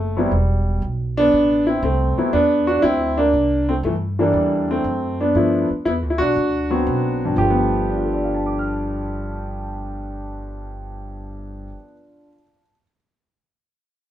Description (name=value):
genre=jazz piano trio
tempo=119 BPM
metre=4/4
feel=swing 68% on 8ths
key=G major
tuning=A4 = 439 Hz
part: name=warm grand piano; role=melody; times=0.0-13.0 s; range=G2 to F6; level=-19 LUFS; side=equal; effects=none
part: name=upright bass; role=bass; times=0.0-11.7 s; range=E1 to G2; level=-25 LUFS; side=equal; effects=none
room=wet studio reverb, RT60 0.6 s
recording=band playing live in one room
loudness=-17 LUFS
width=side -12 dB against mid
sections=0.0-7.4 A section; 7.4-11.4 B section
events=none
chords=0.0 D13; 3.3 C13; 5.4 G13; 6.4 D6; 7.4 G9